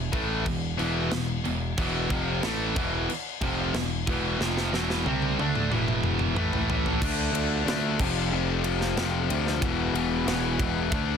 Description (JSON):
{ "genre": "heavy metal", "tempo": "92 BPM", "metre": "4/4", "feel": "straight", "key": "E phrygian dominant", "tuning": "A4 = 440 Hz", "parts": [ { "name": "distorted electric guitar", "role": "riff", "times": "0.0-11.2 s", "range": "E2 to D4", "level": "-29 LUFS", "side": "left 10 dB", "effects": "overdrive" }, { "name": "overdriven electric guitar", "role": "riff", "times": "0.0-11.2 s", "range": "E2 to D4", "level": "-33 LUFS", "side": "right 2 dB", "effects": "none" }, { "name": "scooped high-gain guitar", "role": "riff", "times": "0.0-7.0 s", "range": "E2 to D4", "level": "-32 LUFS", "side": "right 16 dB", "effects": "distortion" }, { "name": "picked electric bass", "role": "bass", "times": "0.0-11.2 s", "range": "E1 to D2", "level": "-30 LUFS", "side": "right 1 dB", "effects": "none" }, { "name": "tight metal drum kit", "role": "drums", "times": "0.1-11.1 s", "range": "crash cymbal, kick drum, ride cymbal, snare drum, toms", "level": "-30 LUFS", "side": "equal", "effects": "soft clipping on kick" }, { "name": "phased analog pad", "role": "sustained chords", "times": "7.0-11.2 s", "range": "E4 to A5", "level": "-39 LUFS", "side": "right 1 dB", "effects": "phaser, chorus" } ], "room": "little or no reverb", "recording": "dense, heavily limited modern master", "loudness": "-24 LUFS", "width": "side -7 dB against mid", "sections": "0.0-7.0 A section; 7.0-11.2 B section", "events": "drum fill 4.4-7.0", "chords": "0.0 E5; 6.4 A5; 7.0 Dm; 8.0 F; 9.6 E", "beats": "0.47 1.13 | 1.78 2.44 3.10 3.75 | 4.41 5.07 5.72 6.37 | 7.03 7.68 8.33 8.98 | 9.63 10.28 10.93" }